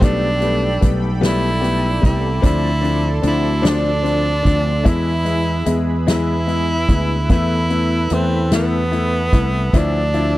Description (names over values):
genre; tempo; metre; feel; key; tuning
six-eight pop ballad; 49 BPM (dotted quarters); 6/8; straight; unclear; A4 = 440 Hz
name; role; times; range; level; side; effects
edgy tenor saxophone; melody; 0.0-10.4 s; B3 to E4; -21 LUFS; right 1 dB; none
clear grand piano; accompaniment; 0.0-10.4 s; F3 to E4; -22 LUFS; left 4 dB; none
warm analog pad; sustained chords; 0.0-10.4 s; F3 to C6; -29 LUFS; right 3 dB; chorus, tremolo
fretless electric bass; bass; 0.0-10.4 s; B1 to E2; -19 LUFS; equal; analog chorus
soft-mallet drum kit; drums; 0.0-10.3 s; hi-hat, kick drum, snare drum; -17 LUFS; equal; none
room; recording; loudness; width
small room ambience; dry, close 1970s-style studio recording; -15 LUFS; side -16 dB against mid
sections
0.0-10.4 A section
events
none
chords
0.0 Gadd9/B; 2.4 Dm7; 4.9 E; 7.3 Esus4; 9.7 Dmadd9